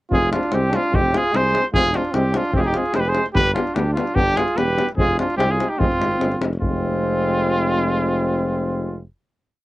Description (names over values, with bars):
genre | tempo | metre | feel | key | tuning
balkan folk, Balkan brass band | 148 BPM | 2/4 | straight | F dorian sharp4 | A4 = 440 Hz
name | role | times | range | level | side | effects
clear trumpet | melody | 0.1-9.0 s | F4 to C5 | -21 LUFS | equal | none
warm flugelhorn | second line | 0.1-9.0 s | C4 to Ab4 | -27 LUFS | right 2 dB | none
brilliant trombone | accompaniment | 0.1-9.0 s | G3 to Ab3 | -30 LUFS | right 5 dB | none
clear euphonium | accompaniment | 0.1-9.0 s | B3 to C4 | -27 LUFS | left 4 dB | none
mellow tuba | bass | 0.1-9.0 s | E1 to D2 | -24 LUFS | equal | none
davul | percussion | 0.1-6.8 s | none | -24 LUFS | left 1 dB | none
room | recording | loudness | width
light reverb | none | -17 LUFS | side -17 dB against mid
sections
0.1-6.6 A section; 6.6-8.3 final chord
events
none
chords
0.1 Fm; 3.3 G; 5.0 Fm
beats
| 0.12 0.52 | 0.93 1.33 | 1.73 2.14 | 2.54 2.94 | 3.35 3.75 | 4.16 4.57 | 4.97 5.38 | 5.79 6.20 | 6.62 7.03 | 7.44 7.86